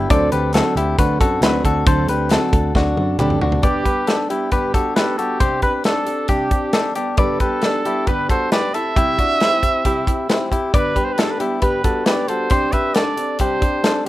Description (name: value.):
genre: jangly indie pop.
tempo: 135 BPM.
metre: 4/4.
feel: straight.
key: G major.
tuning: A4 = 440 Hz.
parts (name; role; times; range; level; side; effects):
fingerpicked plugged-in steel-string acoustic guitar; accompaniment; 0.0-14.1 s; G2 to A4; -24 LUFS; right 4 dB; none.
warm upright piano; accompaniment; 0.0-3.7 s; D4 to B5; -32 LUFS; right 3 dB; none.
direct-recorded clean electric guitar; arpeggios; 0.0-14.1 s; C4 to D5; -20 LUFS; left 3 dB; none.
vintage muted picked electric bass; bass; 0.0-3.6 s; D2 to F#2; -22 LUFS; equal; none.
modern studio drum kit; drums; 0.1-14.1 s; hi-hat, kick drum, snare drum, toms; -19 LUFS; equal; none.
group handclap; percussion; 0.5-3.3 s; none; -35 LUFS; right 2 dB; none.
clear trumpet; melody; 3.6-14.0 s; G4 to E5; -22 LUFS; right 3 dB; none.
room: light reverb.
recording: rough home demo mix.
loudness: -16 LUFS.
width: side -16 dB against mid.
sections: 0.0-3.6 A section; 3.6-14.1 B section.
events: drum fill 2.8-3.6; upright piano fill 3.0-3.6.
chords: 0.1 D7; 3.6 G; 5.4 Csus2; 7.0 G; 8.7 C; 10.7 G; 12.5 Csus2.